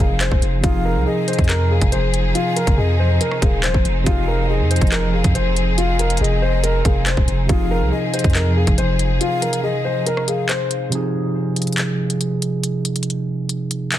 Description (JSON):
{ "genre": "hip hop, drill", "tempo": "140 BPM", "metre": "4/4", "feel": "half-time", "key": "F minor", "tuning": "A4 = 440 Hz", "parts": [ { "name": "dark grand piano", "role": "melody", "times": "0.0-10.9 s", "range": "F4 to C5", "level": "-24 LUFS", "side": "left 2 dB", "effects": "tape echo" }, { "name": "mellow hollow concert flute", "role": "second line", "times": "0.0-10.5 s", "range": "Eb5 to F5", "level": "-28 LUFS", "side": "left 5 dB", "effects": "tape echo" }, { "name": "overdriven tine electric piano", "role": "accompaniment", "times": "0.0-14.0 s", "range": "C3 to Ab4", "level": "-23 LUFS", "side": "right 2 dB", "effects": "lush chorus" }, { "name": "warm symphonic string section", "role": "sustained chords", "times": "0.0-10.9 s", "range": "F3 to Ab4", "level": "-26 LUFS", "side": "equal", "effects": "none" }, { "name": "long sustained 808-style bass", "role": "bass", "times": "0.0-9.2 s", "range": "Eb1 to F2", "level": "-19 LUFS", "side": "equal", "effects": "none" }, { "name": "drill drum kit", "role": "drums", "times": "0.2-14.0 s", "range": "handclaps, hi-hat, kick drum, rim click", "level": "-20 LUFS", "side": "equal", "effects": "none" } ], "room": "light reverb, small room ambience", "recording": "dense, heavily limited modern master", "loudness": "-16 LUFS", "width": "side -12 dB against mid", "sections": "0.0-10.9 A section; 10.9-14.0 B section", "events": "break 9.2-10.9, 10.9-14.0", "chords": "0.0 Fm7", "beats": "0.21 | 0.64 1.06 1.49 1.92 | 2.35 2.78 3.21 3.64 | 4.07 4.49 4.92 5.35 | 5.78 6.21 6.64 7.07 | 7.49 7.92 8.35 8.78 | 9.21 9.64 10.06 10.49 | 10.92 11.35 11.78 12.21 | 12.64 13.06 13.49 13.92" }